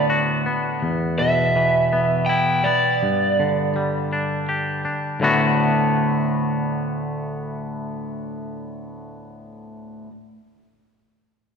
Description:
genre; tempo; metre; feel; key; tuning
rock; 82 BPM; 3/4; straight; D major; A4 = 440 Hz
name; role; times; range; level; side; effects
raw garage guitar; melody; 0.0-4.4 s; D5 to G5; -20 LUFS; right 3 dB; overdrive
twangy electric guitar; arpeggios; 0.0-10.1 s; D2 to G4; -21 LUFS; left 2 dB; none
room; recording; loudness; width
wet concert hall reverb, RT60 1.9 s; recorded in a church or concert hall; -18 LUFS; side -6 dB against mid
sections
0.0-5.2 A section; 5.2-9.6 B section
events
none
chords
0.0 D6; 0.8 E5; 3.0 G5; 5.2 D6

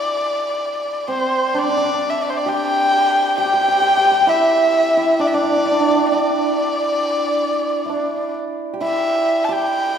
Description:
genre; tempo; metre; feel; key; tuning
chinese traditional, Chinese chamber ensemble; 66 BPM; 4/4; straight; unclear; A4 = 440 Hz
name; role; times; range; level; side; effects
dark erhu; melody; 0.0-10.0 s; C5 to A5; -17 LUFS; left 1 dB; none
hammered dulcimer; second line; 0.0-10.0 s; C4 to G4; -21 LUFS; right 2 dB; none
room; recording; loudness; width
wet scoring stage reverb, RT60 1.6 s; recorded in a church or concert hall; -16 LUFS; side -8 dB against mid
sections
0.0-1.6 A section; 1.6-10.0 B section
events
none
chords
none

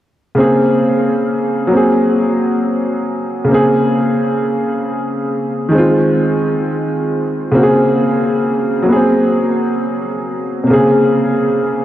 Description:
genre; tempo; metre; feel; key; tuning
hip hop; 67 BPM; 4/4; swing 64% on 16ths; Bb minor; A4 = 441 Hz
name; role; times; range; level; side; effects
warm upright piano; solo; 0.3-11.8 s; C3 to Ab4; -12 LUFS; equal; cassette tape, low-pass filter, analog delay
room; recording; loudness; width
wet huge ambient reverb, RT60 4.7 s; dreamy mix soaked in reverb, cassette tape; -12 LUFS; side -12 dB against mid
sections
0.4-11.8 A section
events
none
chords
0.4 Bbm9; 1.7 Ab9; 3.5 Bbm9; 5.7 Fm7; 7.5 Bbm9; 8.9 Ab9; 10.7 Bbm9

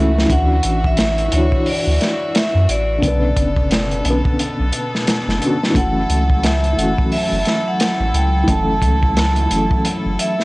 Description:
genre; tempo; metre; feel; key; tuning
trip hop; 88 BPM; 4/4; swing 59% on 16ths; F# minor; A4 = 438 Hz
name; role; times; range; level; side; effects
vibraphone with medium hard mallets; melody; 0.0-10.4 s; C#5 to A5; -22 LUFS; equal; vintage 12-bit sampler grit, tape echo
felt-muted upright piano; accompaniment; 0.0-10.4 s; C#3 to B4; -21 LUFS; equal; tremolo
rich chamber string section; sustained chords; 0.0-10.4 s; B2 to E5; -25 LUFS; equal; vintage 12-bit sampler grit
soft dub sub bass; bass; 0.0-10.2 s; F#1 to F#2; -18 LUFS; equal; none
crunchy breakbeat drum kit; drums; 0.2-10.4 s; hi-hat, kick drum, snare drum; -19 LUFS; equal; none
wind-like tuned noise texture; texture; 7.7-10.4 s; F#3 to E4; -34 LUFS; left 2 dB; none
room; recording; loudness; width
small room ambience; worn, warbling old tape, cassette tape, warbly pitch drift, nothing above 10.5 kHz; -14 LUFS; side -22 dB against mid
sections
0.0-10.4 A section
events
none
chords
0.3 Dmaj9; 3.0 Bm9; 5.8 F#m7

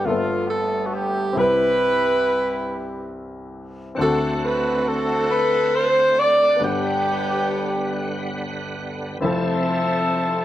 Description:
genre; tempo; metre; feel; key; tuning
gospel; 46 BPM (dotted quarters); 6/8; straight; G major; A4 = 440 Hz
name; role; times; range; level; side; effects
clear alto saxophone; melody; 0.0-8.3 s; F4 to D5; -22 LUFS; right 3 dB; none
mellow horn section; melody; 0.0-10.4 s; A3 to D5; -22 LUFS; left 2 dB; slapback echo
warm grand piano; accompaniment; 0.0-10.4 s; F1 to F#5; -25 LUFS; left 2 dB; none
bright tonewheel organ; sustained chords; 4.0-10.4 s; D3 to F#5; -29 LUFS; right 2 dB; fast rotary speaker, overdrive, chorus vibrato
room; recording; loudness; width
little or no reverb; recorded outdoors, with no room sound; -18 LUFS; side -13 dB against mid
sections
0.0-9.2 A section; 9.2-10.4 B section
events
none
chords
0.0 G13; 1.3 Cmaj7; 4.0 D7; 6.6 Gmaj7; 9.2 Fmaj7

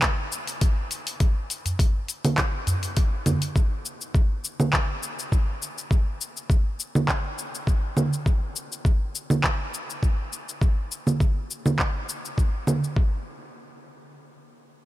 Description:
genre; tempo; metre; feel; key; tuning
downtempo; 102 BPM; 4/4; swing 54% on 16ths; none; none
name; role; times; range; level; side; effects
afro-pop drum kit; drums; 0.0-12.9 s; cabasa, congas, handclaps, hi-hat; -26 LUFS; right 1 dB; none
electronic kick drum; drums; 0.0-13.1 s; none; -22 LUFS; equal; overdrive
udu; percussion; 1.7-3.4 s; none; -28 LUFS; equal; none
room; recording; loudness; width
little or no reverb; none; -23 LUFS; side -16 dB against mid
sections
0.0-13.0 A section; 13.0-14.8 B section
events
none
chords
none

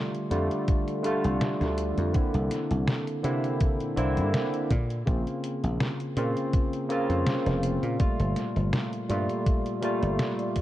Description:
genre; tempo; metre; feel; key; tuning
vaporwave; 82 BPM; 4/4; swing 54% on 16ths; F major; A4 = 440 Hz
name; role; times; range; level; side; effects
barky tine electric piano; accompaniment; 0.0-10.6 s; Bb2 to F4; -28 LUFS; equal; analog chorus, vintage 12-bit sampler grit, analog delay
detuned 8-bit digital drum machine; drums; 0.1-10.6 s; hi-hat, snare drum; -31 LUFS; equal; none
dry thumbed slap bass; bass; 0.3-10.2 s; F1 to C3; -28 LUFS; equal; none
electronic kick drum; drums; 0.7-10.6 s; none; -24 LUFS; equal; none
room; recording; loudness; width
light reverb; dark, warm production, cassette tape; -25 LUFS; side -14 dB against mid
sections
0.0-10.6 A section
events
none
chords
0.0 F69; 2.1 C9; 4.7 Bbmadd9; 8.0 Gm9

